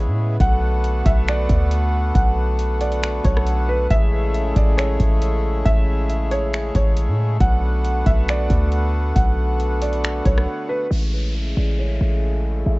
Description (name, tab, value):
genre	hip hop, atmospheric cloud-rap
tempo	137 BPM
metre	4/4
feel	half-time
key	A major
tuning	A4 = 440 Hz
part	felt-muted upright piano	melody	0.0-12.8 s	B4 to F#5	-27 LUFS	right 1 dB	low-pass filter, digital delay
part	pedal harmonium	sustained chords	0.0-12.8 s	C#3 to F#4	-25 LUFS	left 1 dB	low-pass filter
part	warm 808-style bass	bass	0.0-12.8 s	A1 to A2	-20 LUFS	equal	none
part	downlifter	sound effects	0.0-0.4, 10.9-12.8 s	none	-36 LUFS	left 1 dB	none
part	booming analog drum machine	drums	0.4-10.5 s	finger snaps, hi-hat, kick drum, rim click	-19 LUFS	equal	none
room	little or no reverb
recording	worn, warbling old tape, cassette tape, warbly pitch drift, nothing above 7.9 kHz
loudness	-17 LUFS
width	side -22 dB against mid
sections	0.0-10.9 A section; 10.9-12.8 B section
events	break 10.5-10.9; filter sweep 10.9-12.8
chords	0.4 Bm7; 3.9 Amaj7; 7.4 Bm7; 10.9 Amaj7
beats	| 0.40 0.84 1.28 1.72 | 2.15 2.59 3.03 3.47 | 3.90 4.34 4.78 5.22 | 5.66 6.09 6.53 6.97 | 7.41 7.85 8.28 8.72 | 9.16 9.60 10.04 10.47 | 10.91 11.35 11.79 12.23 | 12.66